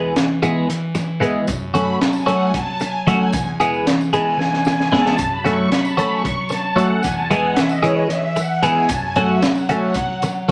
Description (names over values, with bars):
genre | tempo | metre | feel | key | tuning
psychedelic rock | 227 BPM (eighths) | 7/8 | straight | F# minor | A4 = 441 Hz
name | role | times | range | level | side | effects
twelve-string electric guitar | riff | 0.0-10.5 s | E3 to G#4 | -20 LUFS | equal | phaser
fuzz fingered electric bass | bass | 0.0-10.5 s | E2 to F#3 | -29 LUFS | equal | overdrive
crunchy breakbeat drum kit | drums | 0.2-10.5 s | hi-hat, kick drum, snare drum | -25 LUFS | equal | none
tambourine | percussion | 0.9-10.3 s | none | -42 LUFS | equal | none
string machine, violas | sustained chords | 1.7-10.5 s | C#5 to C#6 | -26 LUFS | equal | ensemble chorus
room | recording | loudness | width
moderate large studio reverb, RT60 0.9 s | none | -18 LUFS | mono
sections
0.0-10.5 A section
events
string machine solo 0.0-10.5; drum fill 4.4-5.2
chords
0.0 E; 1.5 F#m; 3.3 E; 5.2 F#m; 7.0 E; 8.9 F#m